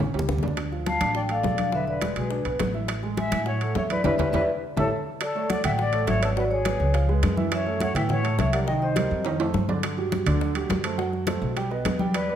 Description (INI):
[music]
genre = Afro-Cuban jazz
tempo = 208 BPM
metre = 4/4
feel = straight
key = A major, D major from 5.2 s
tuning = A4 = 440 Hz
[part]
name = warm upright piano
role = accompaniment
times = 0.0-12.4 s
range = D3 to G5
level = -30 LUFS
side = right 4 dB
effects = none
[part]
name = upright bass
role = bass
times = 0.0-12.4 s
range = E1 to A2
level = -28 LUFS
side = equal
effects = none
[part]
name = bongos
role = percussion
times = 0.0-12.3 s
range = none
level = -34 LUFS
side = left 6 dB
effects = none
[part]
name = congas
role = percussion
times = 0.0-12.4 s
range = none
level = -30 LUFS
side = left 1 dB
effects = none
[part]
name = timbales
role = percussion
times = 0.0-12.3 s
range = none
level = -33 LUFS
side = right 5 dB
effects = none
[part]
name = vibraphone with medium mallets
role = melody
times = 0.9-9.4, 12.1-12.4 s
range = A4 to A5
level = -28 LUFS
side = left 1 dB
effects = none
[part]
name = breathy concert flute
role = second line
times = 0.9-9.4, 12.1-12.4 s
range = G#4 to F5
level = -30 LUFS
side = left 4 dB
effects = none
[sound]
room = wet large studio reverb, RT60 1.3 s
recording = none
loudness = -22 LUFS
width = side -10 dB against mid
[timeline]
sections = 0.0-5.2 A section; 5.2-12.4 B section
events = drum fill 0.0-0.6, 4.1-5.2, 9.3-9.8; band accent 4.1-5.2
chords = 0.0 A7; 0.6 Dm; 1.7 E7; 2.9 Amaj7; 4.1 Em7; 4.6 A7(no3); 5.2 Dmaj7; 6.4 G#m7b5; 6.9 C#7; 7.5 F#m7; 8.7 Cm7; 9.3 F9; 9.8 Gsus2; 11.0 F#dim; 11.6 Baug